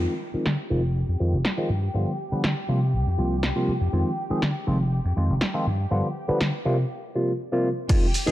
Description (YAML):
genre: filtered disco house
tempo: 121 BPM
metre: 4/4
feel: straight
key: F dorian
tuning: A4 = 438 Hz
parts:
  - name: barky tine electric piano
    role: accompaniment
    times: 0.0-8.3 s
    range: C3 to B4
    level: -26 LUFS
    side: equal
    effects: phaser, sidechain pumping, low-pass filter
  - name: bright chamber violin section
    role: sustained chords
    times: 0.0-8.3 s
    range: G4 to G5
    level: -36 LUFS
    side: left 1 dB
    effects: sidechain pumping, low-pass filter
  - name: vintage slap bass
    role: bass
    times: 0.0-8.3 s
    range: F1 to D3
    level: -24 LUFS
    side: equal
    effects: tube saturation, sidechain pumping, low-pass filter
  - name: punchy analog drum machine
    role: drums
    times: 0.5-8.3 s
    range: crash cymbal, hi-hat, ride cymbal, shaker, snare drum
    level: -29 LUFS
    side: equal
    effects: sidechain pumping on hats, low-pass filter on hats, sidechain pumping on perc, low-pass filter on perc, low-pass filter on snare, sidechain pumping on cymbals, low-pass filter on cymbals
  - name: electronic kick drum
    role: drums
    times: 7.9-8.0 s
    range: none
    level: -20 LUFS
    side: equal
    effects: none
room: light reverb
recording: none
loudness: -22 LUFS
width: side -15 dB against mid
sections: 0.0-7.9 A section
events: break 6.9-7.9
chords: 0.0 Fm7; 1.7 G7; 2.7 C7sus4; 3.9 Fm7; 5.7 G7; 6.7 C7sus4